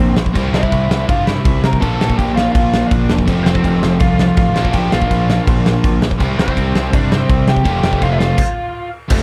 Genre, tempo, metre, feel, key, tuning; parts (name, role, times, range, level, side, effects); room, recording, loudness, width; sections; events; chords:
punk rock; 164 BPM; 4/4; straight; F major; A4 = 442 Hz
lead guitar through a small cranked amp; melody; 0.0-8.9 s; C4 to Bb5; -23 LUFS; equal; overdrive
crunchy overdriven guitar; riff; 0.0-9.2 s; F2 to F4; -19 LUFS; equal; spring reverb
growling picked electric bass; bass; 0.0-9.2 s; E1 to C3; -22 LUFS; equal; overdrive
big rock drum kit; drums; 0.2-9.2 s; crash cymbal, kick drum, snare drum; -19 LUFS; equal
little or no reverb; cassette tape; -15 LUFS; mono
0.0-9.1 A section
stop 8.4-9.1
0.3 C; 1.8 Bb; 3.3 F; 4.5 Bb; 6.2 C; 7.7 F